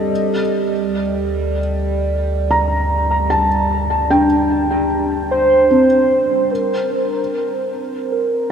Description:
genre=ambient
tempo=75 BPM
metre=4/4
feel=straight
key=unclear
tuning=A4 = 441 Hz
part: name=warm velvety synth lead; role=melody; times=0.0-0.1, 5.3-8.5 s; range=Bb4 to C5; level=-17 LUFS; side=right 2 dB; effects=chorus, tape echo
part: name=felt-muted upright piano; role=arpeggios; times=0.0-8.5 s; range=C4 to Bb5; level=-18 LUFS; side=left 1 dB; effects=tape echo
part: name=deep rumbling drone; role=bass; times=0.9-6.5 s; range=D2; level=-23 LUFS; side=equal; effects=built-in reverb
part: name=overtone-sweeping drone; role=drone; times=0.0-6.6 s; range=G3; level=-23 LUFS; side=right 2 dB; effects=chorus, built-in reverb, phaser
room=wet huge ambient reverb, RT60 7.5 s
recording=none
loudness=-15 LUFS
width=side -7 dB against mid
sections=0.0-6.5 A section; 6.5-8.5 B section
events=fade-out on synth drone 0.0-6.5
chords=0.1 Bbmaj7/D; 6.5 Gm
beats=| 0.11 0.91 1.71 2.51 | 3.31 4.11 4.91 5.71 | 6.51 7.31 8.11

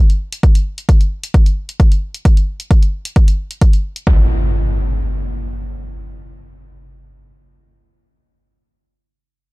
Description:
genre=driving peak-time techno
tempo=132 BPM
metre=4/4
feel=straight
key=none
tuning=none
part: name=electronic hi-hat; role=drums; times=0.1-4.0 s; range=none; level=-29 LUFS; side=left 1 dB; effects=sidechain pumping on hats
part: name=electronic kick drum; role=drums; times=0.4-4.2 s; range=none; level=-10 LUFS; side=equal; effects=none
part: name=impact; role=sound effects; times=4.1-7.1 s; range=none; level=-19 LUFS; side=equal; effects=none
room=little or no reverb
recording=dark, warm production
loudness=-13 LUFS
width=side -23 dB against mid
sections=0.0-4.1 A section; 4.1-7.7 B section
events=none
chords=none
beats=| 0.43 0.89 1.34 1.80 | 2.25 2.71 3.16 3.62 | 4.07 4.52 4.98 5.43 | 5.89 6.34 6.80

